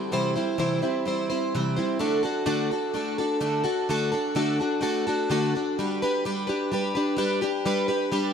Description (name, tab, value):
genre	rock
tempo	127 BPM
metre	4/4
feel	straight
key	D mixolydian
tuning	A4 = 440 Hz
part	picked plugged-in steel-string acoustic guitar	solo	0.0-8.3 s	C3 to C5	-23 LUFS	equal	analog chorus, tape echo
room	wet plate reverb, RT60 3.7 s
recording	dreamy mix soaked in reverb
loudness	-23 LUFS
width	side -7 dB against mid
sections	0.0-2.0 A section; 2.0-8.3 B section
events	none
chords	0.0 C; 2.0 D; 5.8 G